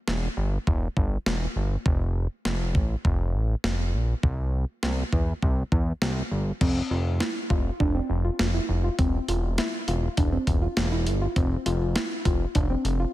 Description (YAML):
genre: synth-pop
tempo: 101 BPM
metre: 4/4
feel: straight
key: unclear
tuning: A4 = 440 Hz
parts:
  - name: fat analog bass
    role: bass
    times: 0.1-13.1 s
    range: E1 to E2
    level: -25 LUFS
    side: equal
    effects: none
  - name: clean 12-bit digital drum machine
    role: drums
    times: 0.1-13.0 s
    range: crash cymbal, hi-hat, kick drum, snare drum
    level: -26 LUFS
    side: equal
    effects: none
  - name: soft round pluck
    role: arpeggios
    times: 6.6-13.1 s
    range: C4 to F4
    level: -29 LUFS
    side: equal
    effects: chorus, ping-pong delay, slapback echo
room: light reverb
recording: none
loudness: -23 LUFS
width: side -15 dB against mid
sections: 0.0-6.6 A section; 6.6-13.1 B section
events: none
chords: 0.0 Em; 1.9 Fadd11; 4.2 C; 6.6 F5; 9.0 C/E; 11.4 Dm7/F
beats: 0.07 0.67 1.26 | 1.86 2.45 3.05 3.64 | 4.23 4.83 5.42 6.02 | 6.61 7.20 7.80 8.39 | 8.99 9.58 10.17 10.77 | 11.36 11.96 12.55